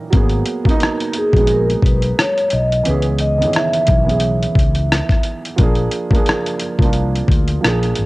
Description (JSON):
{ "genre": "lo-fi hip hop", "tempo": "88 BPM", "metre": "4/4", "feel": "swing 56% on 16ths", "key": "G# minor", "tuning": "A4 = 440 Hz", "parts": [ { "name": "felt-muted upright piano", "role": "accompaniment", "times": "0.0-8.1 s", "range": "A#2 to A#4", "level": "-21 LUFS", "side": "right 3 dB", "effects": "low-pass filter, cassette tape" }, { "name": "mellow fretless electric bass", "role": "bass", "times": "0.1-8.1 s", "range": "G#1 to D2", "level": "-18 LUFS", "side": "left 1 dB", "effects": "tube saturation, analog chorus" }, { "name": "dusty soul sampler-style drum kit", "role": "drums", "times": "0.1-8.1 s", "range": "hi-hat, kick drum, rim click", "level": "-16 LUFS", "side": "left 1 dB", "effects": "overdrive, cassette tape" }, { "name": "vibraphone with soft mallets", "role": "melody", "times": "1.2-5.2 s", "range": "G#4 to E5", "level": "-18 LUFS", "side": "equal", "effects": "low-pass filter, cassette tape" } ], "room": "light reverb, studio ambience", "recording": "home recording on cassette", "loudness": "-14 LUFS", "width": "side -20 dB against mid", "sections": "0.1-8.1 A section", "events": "none", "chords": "0.1 G#m9; 2.9 C#m7; 5.6 A#7", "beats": "| 0.13 0.81 1.50 2.18 | 2.86 3.54 4.22 4.90 | 5.59 6.27 6.95 7.63" }